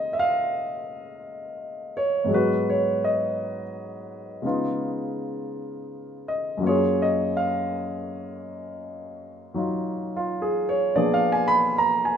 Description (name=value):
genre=jazz ballad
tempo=56 BPM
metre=4/4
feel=swing 69% on 8ths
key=unclear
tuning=A4 = 441 Hz
part: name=warm baby grand piano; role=solo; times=0.0-12.2 s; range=Gb2 to Cb6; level=-23 LUFS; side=equal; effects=none
room=moderate large studio reverb, RT60 1.1 s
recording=minimal, uncompressed stereo recording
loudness=-22 LUFS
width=side -8 dB against mid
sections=0.0-12.2 A section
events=none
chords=0.0 Db6; 2.3 Abm7; 4.4 Db7; 6.6 Gbmaj7; 10.9 Bb7b9